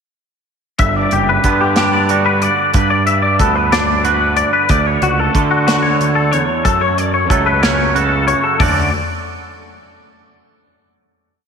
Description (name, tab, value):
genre	math rock and midwest emo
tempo	62 BPM (dotted quarters)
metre	6/8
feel	straight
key	D major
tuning	A4 = 440 Hz
part	twangy electric guitar	accompaniment	0.8-8.9 s	D2 to F#4	-19 LUFS	right 8 dB	analog chorus
part	twangy electric guitar	arpeggios	0.8-8.9 s	F#4 to E5	-15 LUFS	left 4 dB	ensemble chorus
part	fuzz picked electric bass	bass	0.8-8.9 s	F#1 to D3	-19 LUFS	equal	overdrive
part	modern studio drum kit	drums	0.8-8.8 s	hi-hat, kick drum, snare drum, toms	-20 LUFS	equal	none
room	moderate lush hall reverb, RT60 2.8 s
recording	dreamy mix soaked in reverb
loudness	-12 LUFS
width	side -6 dB against mid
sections	0.8-8.6 A section; 8.6-10.5 final chord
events	none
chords	0.8 Gmaj7; 4.7 Dmaj7; 6.6 F#m; 8.6 Dmaj7